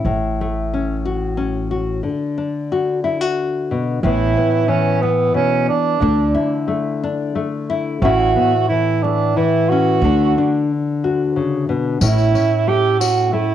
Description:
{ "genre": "acoustic folk duo or small band", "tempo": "90 BPM", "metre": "3/4", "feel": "straight", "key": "unclear", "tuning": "A4 = 439 Hz", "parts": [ { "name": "nylon-string guitar", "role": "accompaniment", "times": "0.0-13.5 s", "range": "A2 to F#4", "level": "-18 LUFS", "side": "left 4 dB", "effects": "cassette tape, plate reverb" }, { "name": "upright bass", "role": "bass", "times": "0.0-12.3 s", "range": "A1 to D2", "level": "-20 LUFS", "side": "right 1 dB", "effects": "none" }, { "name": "mellow tenor saxophone", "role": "second line", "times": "4.0-13.5 s", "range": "B3 to G4", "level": "-17 LUFS", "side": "right 7 dB", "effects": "cassette tape, plate reverb" }, { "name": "tambourine", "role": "percussion", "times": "12.0-13.3 s", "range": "none", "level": "-27 LUFS", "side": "left 8 dB", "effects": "none" } ], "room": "wet small room reverb, RT60 0.5 s", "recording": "home recording on cassette", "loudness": "-15 LUFS", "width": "side -10 dB against mid", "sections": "0.0-4.0 A section; 4.0-13.5 B section", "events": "tenor saxophone solo 4.0-13.5", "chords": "0.1 F#m/A; 2.0 D; 4.0 Asus2; 6.0 Dsus2; 8.0 A; 10.0 Dadd9; 12.0 A" }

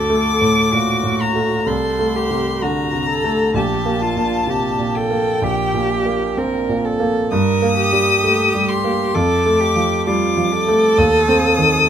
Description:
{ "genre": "classical, slow romantic movement for piano trio", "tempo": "64 BPM", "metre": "4/4", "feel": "rubato", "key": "G minor", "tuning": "A4 = 440 Hz", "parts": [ { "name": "clear violin", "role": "melody", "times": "0.0-11.9 s", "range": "G5 to Eb6", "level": "-20 LUFS", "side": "left 5 dB", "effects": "none" }, { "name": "warm cello", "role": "second line", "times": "0.0-11.9 s", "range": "F4 to Bb4", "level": "-20 LUFS", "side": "right 2 dB", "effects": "none" }, { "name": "clear concert grand piano", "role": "accompaniment", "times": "0.0-11.9 s", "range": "Bb1 to C4", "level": "-18 LUFS", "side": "right 1 dB", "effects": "none" } ], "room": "light reverb", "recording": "close, detailed microphones", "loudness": "-15 LUFS", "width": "side -9 dB against mid", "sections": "0.0-11.9 A section", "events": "none", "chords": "0.0 D; 1.7 D5/C; 3.6 Gm/Bb; 7.3 Eb/G; 9.1 Dm/F; 11.0 Cm/Eb" }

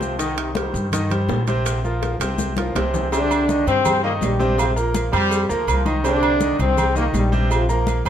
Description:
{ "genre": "latin, salsa", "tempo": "164 BPM", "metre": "4/4", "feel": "straight", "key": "C minor", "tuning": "A4 = 440 Hz", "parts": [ { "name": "brilliant trombone section", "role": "second line", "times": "0.0-1.3, 5.1-8.1 s", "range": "C3 to G3", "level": "-25 LUFS", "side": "equal", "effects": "none" }, { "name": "bright concert grand piano", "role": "accompaniment", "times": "0.0-8.1 s", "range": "C3 to C6", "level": "-24 LUFS", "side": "right 1 dB", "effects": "none" }, { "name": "upright bass", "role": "bass", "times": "0.0-8.1 s", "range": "Bb1 to G2", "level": "-23 LUFS", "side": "equal", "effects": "none" }, { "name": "bongos and cowbell", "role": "percussion", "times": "0.0-8.1 s", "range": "none", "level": "-31 LUFS", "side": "left 5 dB", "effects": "none" }, { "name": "congas", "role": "percussion", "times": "0.0-8.1 s", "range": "none", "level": "-29 LUFS", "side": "left 2 dB", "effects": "none" }, { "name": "maracas", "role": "percussion", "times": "0.0-8.1 s", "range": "none", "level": "-37 LUFS", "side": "left 6 dB", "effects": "none" }, { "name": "timbales and agogo bells", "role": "percussion", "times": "0.2-8.1 s", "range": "none", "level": "-28 LUFS", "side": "right 7 dB", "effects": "none" }, { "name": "warm trombone section", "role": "melody", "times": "3.1-8.0 s", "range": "G2 to F4", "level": "-21 LUFS", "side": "left 1 dB", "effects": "plate reverb" } ], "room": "moderate studio reverb, RT60 0.7 s", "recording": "none", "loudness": "-17 LUFS", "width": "side -9 dB against mid", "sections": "0.0-3.1 A section; 3.1-8.1 B section", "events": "drum fill 2.2-3.1", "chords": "0.2 Cm; 1.7 Bbsus2; 3.1 Cmadd9; 4.6 Bbsus2; 6.1 Cmadd9; 7.5 Bbsus2" }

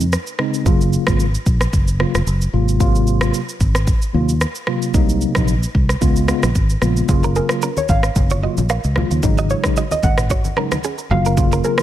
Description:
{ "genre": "afrobeats", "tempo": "112 BPM", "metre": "4/4", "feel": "swing 55% on 16ths", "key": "unclear", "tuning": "A4 = 440 Hz", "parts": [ { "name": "mellow tine electric piano", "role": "accompaniment", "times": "0.0-11.8 s", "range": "C3 to F4", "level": "-21 LUFS", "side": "equal", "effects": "medium stereo tremolo" }, { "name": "fingered electric bass", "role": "bass", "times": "0.0-11.6 s", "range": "F1 to F2", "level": "-18 LUFS", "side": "equal", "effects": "none" }, { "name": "afro-pop drum kit", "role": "drums", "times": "0.0-11.8 s", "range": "kick drum, rim click, shaker, toms", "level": "-19 LUFS", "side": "equal", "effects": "none" }, { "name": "congas", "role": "percussion", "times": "7.1-11.6 s", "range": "none", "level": "-26 LUFS", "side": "left 2 dB", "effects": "none" }, { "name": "direct-recorded clean electric guitar", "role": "riff", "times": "7.2-11.8 s", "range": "Bb3 to F5", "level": "-25 LUFS", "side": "right 7 dB", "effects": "tape echo" }, { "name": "soft round pluck", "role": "melody", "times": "7.4-11.8 s", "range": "Bb4 to Gb5", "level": "-23 LUFS", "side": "equal", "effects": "chorus, tape echo" } ], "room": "little or no reverb", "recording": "none", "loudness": "-15 LUFS", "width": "side -12 dB against mid", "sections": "0.0-7.1 A section; 7.1-11.8 B section", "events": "none", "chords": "0.0 Bbm11 (rootless); 0.7 Gbmaj7; 2.5 Ab13; 4.9 Cm7b5; 6.0 Db7; 7.1 Gbmaj7; 9.2 Ab7sus4; 11.1 Gbmaj7" }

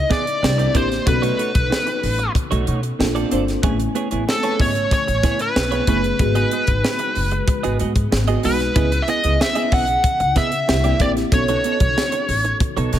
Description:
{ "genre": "polished 1980s jazz-funk pop", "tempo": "94 BPM", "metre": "4/4", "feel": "straight", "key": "unclear", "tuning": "A4 = 440 Hz", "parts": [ { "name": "smooth overdriven lead guitar", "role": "melody", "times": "0.0-12.6 s", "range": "A4 to F#5", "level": "-21 LUFS", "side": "equal", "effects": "ping-pong delay" }, { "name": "bell-like FM electric piano", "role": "accompaniment", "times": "0.0-13.0 s", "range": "G#3 to G#5", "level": "-26 LUFS", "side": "left 2 dB", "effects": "lush chorus" }, { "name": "semi-hollow electric guitar", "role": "riff", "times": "0.1-13.0 s", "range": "A3 to E5", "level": "-26 LUFS", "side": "right 7 dB", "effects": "analog chorus" }, { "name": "crisp fusion drum kit", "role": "drums", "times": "0.1-13.0 s", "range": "hi-hat, kick drum, snare drum", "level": "-22 LUFS", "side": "equal", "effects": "gated reverb" }, { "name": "upright bass", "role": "bass", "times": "0.4-13.0 s", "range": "F#1 to C#3", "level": "-22 LUFS", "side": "equal", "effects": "none" } ], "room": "light reverb, small room ambience", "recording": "none", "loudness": "-16 LUFS", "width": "side -11 dB against mid", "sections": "0.0-13.0 A section", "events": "none", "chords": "0.4 C9; 1.1 B9; 3.0 A#maj9; 3.6 Amaj9; 6.2 G#m7; 8.8 C#m9; 10.7 C9; 11.3 B9" }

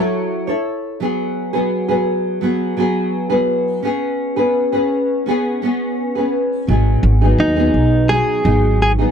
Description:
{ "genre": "acoustic pop", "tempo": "85 BPM", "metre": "4/4", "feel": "straight", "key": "unclear", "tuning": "A4 = 439 Hz", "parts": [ { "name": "nylon-string guitar", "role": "accompaniment", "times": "0.0-9.1 s", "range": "F#3 to C#5", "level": "-17 LUFS", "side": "equal", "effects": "double-tracked left and right" }, { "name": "upright bass", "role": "bass", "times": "6.7-9.0 s", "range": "G#1 to D#2", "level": "-15 LUFS", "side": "equal", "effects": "none" }, { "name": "direct-recorded clean electric guitar", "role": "melody", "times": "7.4-8.9 s", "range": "D#4 to G#4", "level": "-16 LUFS", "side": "right 1 dB", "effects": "none" } ], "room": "little or no reverb", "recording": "dry, close 1970s-style studio recording", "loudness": "-15 LUFS", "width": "side -7 dB against mid", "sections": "0.0-9.1 A section", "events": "none", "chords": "0.0 A6; 1.0 F#sus24; 3.8 C#5; 6.7 G#m7" }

